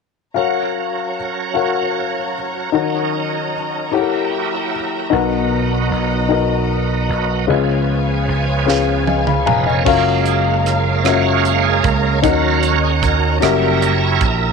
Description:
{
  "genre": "slow gospel",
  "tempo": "50 BPM (dotted quarters)",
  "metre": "6/8",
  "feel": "straight",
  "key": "F# major",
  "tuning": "A4 = 436 Hz",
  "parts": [
    { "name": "dark grand piano", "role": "accompaniment", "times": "0.3-14.5 s", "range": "B2 to B5", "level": "-18 LUFS", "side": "left 10 dB", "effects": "none" },
    { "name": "bright tonewheel organ", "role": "sustained chords", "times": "0.4-14.5 s", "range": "E#3 to G#5", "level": "-21 LUFS", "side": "right 14 dB", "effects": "slow rotary speaker, chorus vibrato" },
    { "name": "warm studio string section", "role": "sustained chords", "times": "0.4-14.5 s", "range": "G4 to A#5", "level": "-26 LUFS", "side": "left 2 dB", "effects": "none" },
    { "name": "vintage slap bass", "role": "bass", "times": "5.1-14.5 s", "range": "E#1 to D#2", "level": "-19 LUFS", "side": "right 3 dB", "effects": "none" },
    { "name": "tight funk drum kit", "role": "drums", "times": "8.7-14.4 s", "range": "crash cymbal, hi-hat, kick drum, rim click, snare drum, toms", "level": "-22 LUFS", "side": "right 6 dB", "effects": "none" }
  ],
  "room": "light reverb, small room ambience",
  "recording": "1960s-style stereo with parts hard left and right",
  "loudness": "-14 LUFS",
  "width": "side -5 dB against mid",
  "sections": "0.4-9.9 A section; 9.9-14.5 B section",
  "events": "grand piano fill 8.7-9.9; tonewheel organ fill 8.7-9.9; drum fill 8.7-9.9; tonewheel organ solo 9.9-14.5",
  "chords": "0.4 F#maj7; 2.7 D#m7; 3.9 F#7b9; 5.1 Bmaj7; 7.5 C#7; 9.9 F#maj7; 12.2 D#m7; 13.4 F#7b9",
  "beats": "| 0.36 1.55 | 2.74 3.93 | 5.12 6.30 | 7.49 8.68 | 9.86 11.05 | 12.24 13.42"
}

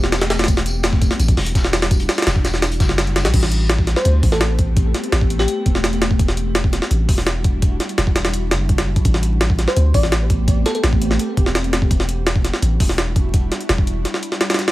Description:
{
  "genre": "drum and bass, jungle",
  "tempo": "168 BPM",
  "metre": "4/4",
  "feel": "straight",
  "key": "A minor",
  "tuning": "A4 = 440 Hz",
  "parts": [
    { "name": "ethereal airy pad", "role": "sustained chords", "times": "0.0-14.7 s", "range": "G3 to G4", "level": "-26 LUFS", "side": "equal", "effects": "ensemble chorus, built-in reverb" },
    { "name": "long sustained 808-style bass", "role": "bass", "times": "0.0-14.1 s", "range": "E1 to D2", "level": "-19 LUFS", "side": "equal", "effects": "tube saturation" },
    { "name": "jungle sampler-style drum kit", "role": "drums", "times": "0.0-14.7 s", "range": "crash cymbal, hi-hat, kick drum, snare drum", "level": "-17 LUFS", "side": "equal", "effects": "none" },
    { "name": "crunchy breakbeat drum kit", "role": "drums", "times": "0.1-3.2 s", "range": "hi-hat, snare drum, tambourine", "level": "-30 LUFS", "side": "left 2 dB", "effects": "high-pass filter on hats, high-pass filter on snare, high-pass filter on perc, high-pass filter on room" },
    { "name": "bell-like FM electric piano", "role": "melody", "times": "4.0-5.7, 9.7-10.8 s", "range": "G4 to D5", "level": "-25 LUFS", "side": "left 1 dB", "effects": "chorus, phaser, dub echo" }
  ],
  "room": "small room ambience",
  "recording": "vinyl crackle",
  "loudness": "-15 LUFS",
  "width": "side -17 dB against mid",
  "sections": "0.0-3.3 A section; 3.3-14.7 A section",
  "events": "drop 0.0-3.3, 3.3-14.7",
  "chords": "0.5 Em9; 3.3 Am9; 6.2 Em9; 9.1 Am9; 11.9 Em9",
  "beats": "0.12 | 0.48 0.84 1.20 1.55 | 1.91 2.27 2.62 2.98 | 3.34 3.69 4.05 4.41 | 4.77 5.12 5.48 5.84 | 6.20 6.55 6.91 7.27 | 7.62 7.98 8.34 8.70 | 9.05 9.41 9.77 10.12 | 10.48 10.84 11.20 11.55 | 11.91 12.27 12.62 12.98 | 13.34 13.70 14.05 14.41"
}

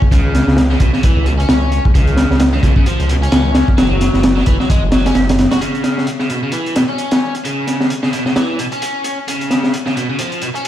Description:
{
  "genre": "breakbeat, breaks",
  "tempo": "131 BPM",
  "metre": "4/4",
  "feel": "swing 57% on 16ths",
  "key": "unclear",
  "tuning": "A4 = 440 Hz",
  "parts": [
    { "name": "crunchy breakbeat drum kit", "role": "drums", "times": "0.0-10.7 s", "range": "hi-hat, kick drum, snare drum", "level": "-14 LUFS", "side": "equal", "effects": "high-pass filter on kick, high-pass filter on hats, high-pass filter on snare, high-pass filter on room" },
    { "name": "biting overdriven guitar", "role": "riff", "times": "0.1-10.7 s", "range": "B2 to F#4", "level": "-19 LUFS", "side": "equal", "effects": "low-pass filter, ping-pong delay" },
    { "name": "detuned saw bass", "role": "bass", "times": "0.1-5.5 s", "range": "F#1 to C#2", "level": "-15 LUFS", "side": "equal", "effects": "none" }
  ],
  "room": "light reverb, small room ambience",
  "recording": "played on a big sound system in a bare room, large studio reverb",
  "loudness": "-12 LUFS",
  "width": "side -12 dB against mid",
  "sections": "0.0-5.6 A section; 5.6-10.7 B section",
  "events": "none",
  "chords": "0.0 N.C.; 3.8 F#5; 5.6 N.C.; 9.3 C#",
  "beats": "| 0.12 0.57 1.03 1.49 | 1.95 2.41 2.86 3.32 | 3.78 4.24 4.70 5.15 | 5.61 6.07 6.53 6.99 | 7.44 7.90 8.36 8.82 | 9.28 9.73 10.19 10.65"
}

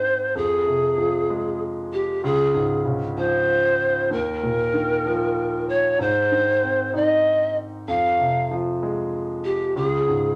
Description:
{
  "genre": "pop",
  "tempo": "64 BPM (dotted quarters)",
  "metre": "6/8",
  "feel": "straight",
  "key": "unclear",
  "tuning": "A4 = 440 Hz",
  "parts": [
    { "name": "mellow pan flute", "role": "melody", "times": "0.0-10.4 s", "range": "G4 to F5", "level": "-23 LUFS", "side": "equal", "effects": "none" },
    { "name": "warm concert grand piano", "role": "accompaniment", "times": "0.0-10.4 s", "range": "Db2 to Eb4", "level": "-28 LUFS", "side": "equal", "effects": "none" }
  ],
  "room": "wet studio reverb, RT60 0.6 s",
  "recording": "none",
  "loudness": "-22 LUFS",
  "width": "mono",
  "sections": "0.0-10.4 A section",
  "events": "none",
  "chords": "0.4 Fm; 2.2 Db; 4.1 Ebsus2; 6.0 Ab; 7.9 Fm; 9.8 Db5",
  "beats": "| 0.35 1.29 | 2.23 3.17 | 4.11 5.05 | 5.99 6.93 | 7.88 8.82 | 9.76"
}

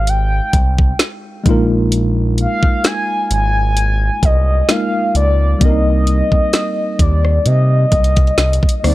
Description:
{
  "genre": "contemporary R&B",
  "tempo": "65 BPM",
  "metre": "4/4",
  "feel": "swing 54% on 16ths",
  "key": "unclear",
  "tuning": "A4 = 438 Hz",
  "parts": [
    { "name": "mellow horn-like synth lead", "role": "melody", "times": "0.0-8.9 s", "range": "D5 to Ab5", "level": "-19 LUFS", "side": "left 1 dB", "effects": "chorus, tremolo, analog delay" },
    { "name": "mellow tine electric piano", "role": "accompaniment", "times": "0.0-8.9 s", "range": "G3 to C5", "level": "-21 LUFS", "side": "equal", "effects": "medium stereo tremolo" },
    { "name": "smooth gliding synth bass", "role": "bass", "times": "0.0-8.9 s", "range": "Ab1 to C3", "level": "-14 LUFS", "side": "equal", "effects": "none" },
    { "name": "smooth R&B drum kit", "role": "drums", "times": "0.1-8.9 s", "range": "hi-hat, kick drum, rim click, snare drum", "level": "-15 LUFS", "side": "equal", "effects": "none" }
  ],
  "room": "little or no reverb",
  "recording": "dry, gritty hardware recording",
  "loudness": "-12 LUFS",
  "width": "side -17 dB against mid",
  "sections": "0.0-8.9 A section",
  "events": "none",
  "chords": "0.0 Abmaj7; 1.5 Bb7sus4; 5.6 Cm7",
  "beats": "0.07 1.00 | 1.92 2.84 3.77 4.69 | 5.61 6.54 7.46 8.38"
}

